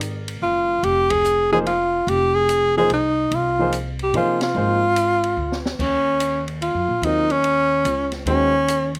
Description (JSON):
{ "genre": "modal jazz", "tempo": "145 BPM", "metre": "3/4", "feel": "swing 65% on 8ths", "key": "F dorian, Eb dorian from 5.8 s", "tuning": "A4 = 438 Hz", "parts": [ { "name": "warm upright piano", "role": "accompaniment", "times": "0.0-4.8, 7.0-8.5 s", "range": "Eb3 to Eb5", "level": "-27 LUFS", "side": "equal", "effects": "none" }, { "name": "upright bass", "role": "bass", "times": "0.0-9.0 s", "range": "F1 to C3", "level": "-29 LUFS", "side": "equal", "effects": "none" }, { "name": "open jazz drum kit", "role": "drums", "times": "0.0-9.0 s", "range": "crash cymbal, hi-hat, kick drum, ride cymbal, snare drum", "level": "-34 LUFS", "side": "equal", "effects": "none" }, { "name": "clear tenor saxophone", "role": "melody", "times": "0.4-8.9 s", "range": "Db4 to Ab4", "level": "-21 LUFS", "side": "equal", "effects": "slapback echo" } ], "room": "little or no reverb", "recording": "recorded outdoors, with no room sound", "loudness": "-20 LUFS", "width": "mono", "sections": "0.0-5.8 A section; 5.8-9.0 B section", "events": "band accent 1.0, 4.4; drum fill 5.4-5.8", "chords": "0.0 Fm9; 5.8 Ebm7" }